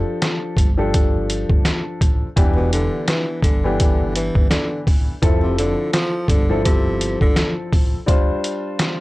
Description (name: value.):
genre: hip hop, boom-bap hip-hop.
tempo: 84 BPM.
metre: 4/4.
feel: swing 57% on 16ths.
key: unclear.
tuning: A4 = 440 Hz.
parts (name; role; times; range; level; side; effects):
dark upright piano; accompaniment; 0.0-9.0 s; E3 to C5; -23 LUFS; left 1 dB; none.
trip hop sampler-style drum kit; drums; 0.2-9.0 s; hi-hat, kick drum, snare drum; -17 LUFS; equal; none.
upright bass; bass; 0.6-7.9 s; E1 to A1; -23 LUFS; equal; none.
breathy tenor saxophone; melody; 2.6-7.5 s; B2 to F3; -24 LUFS; equal; none.
room: little or no reverb.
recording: dry, gritty hardware recording, cassette tape.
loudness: -16 LUFS.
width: side -19 dB against mid.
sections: 0.0-9.0 A section.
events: none.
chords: 0.0 F69; 2.4 Em7; 5.2 Fmaj13; 8.1 G7sus4.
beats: 0.22 0.94 1.65 | 2.37 3.08 3.79 4.51 | 5.22 5.94 6.65 7.37 | 8.08 8.79.